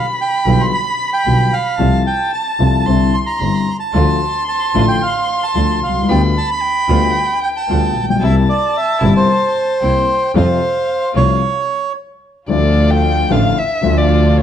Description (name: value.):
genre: tango.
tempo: 112 BPM.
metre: 4/4.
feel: rubato.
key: F major.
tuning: A4 = 442 Hz.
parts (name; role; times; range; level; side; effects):
bandoneon; melody; 0.0-11.9 s; C5 to C6; -17 LUFS; right 4 dB; none.
dark violin; second line; 0.0-14.4 s; C#5 to C6; -21 LUFS; left 3 dB; none.
dark baby grand piano; accompaniment; 0.5-14.4 s; G1 to F4; -17 LUFS; left 6 dB; none.
rich double bass; bass; 0.5-14.4 s; G1 to F2; -17 LUFS; right 2 dB; none.
muted symphonic string section; stabs; 3.9-14.4 s; G3 to F4; -25 LUFS; right 1 dB; none.
room: moderate large studio reverb, RT60 1.1 s.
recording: none.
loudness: -13 LUFS.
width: side -9 dB against mid.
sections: 0.0-12.5 A section; 12.5-14.4 B section.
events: stop 11.4-12.5; violin solo 12.5-14.4.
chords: 0.0 G7/B; 1.8 F/C; 2.9 Cadd9; 3.9 Dm; 6.1 G7/D; 8.2 C7; 10.4 F; 11.4 N.C.; 12.5 Dm.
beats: 0.20 0.73 1.26 | 1.80 2.33 2.87 3.40 | 3.94 4.48 5.01 5.55 | 6.08 6.62 7.15 7.69 | 8.22 8.75 9.28 9.82 | 10.35 10.88 11.42 11.96 | 12.50 13.04 13.57 14.11.